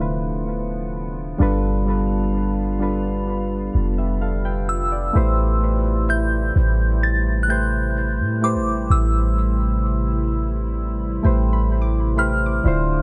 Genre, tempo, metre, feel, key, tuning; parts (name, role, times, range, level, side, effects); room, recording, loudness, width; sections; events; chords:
R&B; 64 BPM; 4/4; straight; A minor; A4 = 440 Hz
soft electric-piano-like synth keys; accompaniment; 0.0-13.0 s; D3 to G5; -27 LUFS; equal; chorus, analog delay
glassy FM pad; sustained chords; 0.0-13.0 s; C3 to F4; -32 LUFS; equal; ensemble chorus, built-in reverb
clean 808-style bass; bass; 0.0-13.0 s; D1 to A2; -23 LUFS; equal
glassy synth bell; melody; 4.7-13.0 s; D6 to A6; -28 LUFS; equal; chorus, analog delay
soft round pluck; texture; 6.1-13.0 s; E5 to D6; -38 LUFS; equal; chorus, analog delay
light reverb; echo-heavy mix, nothing above 10.3 kHz; -21 LUFS; mono
0.0-5.1 A section; 5.1-13.0 B section
0.0 Dm7; 1.4 G7; 5.1 Am7